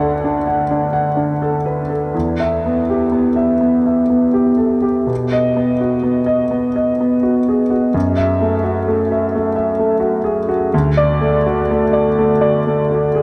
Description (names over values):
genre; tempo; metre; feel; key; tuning
neoclassical minimalist piano; 40-44 BPM (dotted quarters); 6/8; rubato; unclear; A4 = 440 Hz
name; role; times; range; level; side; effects
warm grand piano; solo; 0.0-13.2 s; D2 to F#5; -16 LUFS; equal; none
room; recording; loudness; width
wet huge ambient reverb, RT60 8.4 s; in a vast, echoing space; -16 LUFS; mono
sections
0.0-13.2 A section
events
none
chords
0.0 D; 2.1 Em; 5.1 B; 7.9 F#m7; 10.7 D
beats
0.70 | 2.14 3.63 | 5.10 6.54 | 7.95 9.33 | 10.73 12.17